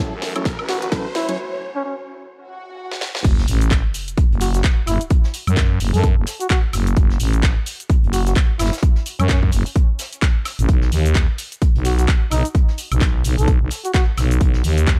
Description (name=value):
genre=bass house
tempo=129 BPM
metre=4/4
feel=swing 58% on 16ths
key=unclear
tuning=A4 = 440 Hz
part: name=sweeping resonant pad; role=sustained chords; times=0.0-1.3 s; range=E3 to F#4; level=-49 LUFS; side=equal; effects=none
part: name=percussive organ stab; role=stabs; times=0.0-1.4 s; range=F#3 to C#5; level=-32 LUFS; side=equal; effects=chorus, sidechain pumping, delay
part: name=growling FM bass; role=bass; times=0.0-15.0 s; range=F#1 to F#2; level=-20 LUFS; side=equal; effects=tube saturation, sidechain pumping, high-pass filter
part: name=riser, swell and sub drop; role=sound effects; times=0.0-5.1 s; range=none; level=-31 LUFS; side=equal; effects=none
part: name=deep dark ambient pad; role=texture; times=0.0-1.4 s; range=F#4 to G#5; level=-42 LUFS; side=equal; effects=none
part: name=house drum kit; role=drums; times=0.2-15.0 s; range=crash cymbal, handclaps, hi-hat, shaker, snare drum, woodblock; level=-29 LUFS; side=equal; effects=high-pass filter on snare, high-pass filter on hats, high-pass filter on perc, high-pass filter on cymbals, high-pass filter on room
part: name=soft brush drum kit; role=drums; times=0.2-15.0 s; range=hi-hat, snare drum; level=-40 LUFS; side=equal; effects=none
part: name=electronic kick drum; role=drums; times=0.5-15.0 s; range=none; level=-18 LUFS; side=equal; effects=none
part: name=trumpet with bucket mute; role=melody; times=0.7-14.0 s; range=C#4 to A4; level=-29 LUFS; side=equal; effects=delay
room=little or no reverb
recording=dark, warm production, high-pass filter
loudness=-18 LUFS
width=mono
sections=0.0-3.2 A section; 3.2-15.0 B section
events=build-up 0.0-3.2; drum fill 0.0-1.4, 2.9-3.2; riser 0.0-1.4; filter sweep on synth stab 0.0-3.2; filter sweep 0.0-3.2; break 1.4-3.2; swell 2.3-3.2; drop 3.2-15.0; impact 3.2-5.1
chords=0.0 F#m7; 3.2 N.C.; 10.7 B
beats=0.45 0.92 | 1.38 1.85 2.31 2.78 | 3.25 3.71 4.17 4.64 | 5.11 5.57 6.04 6.50 | 6.97 7.43 7.90 8.36 | 8.83 9.29 9.76 10.22 | 10.69 11.15 11.62 12.08 | 12.55 13.01 13.48 13.94 | 14.41 14.87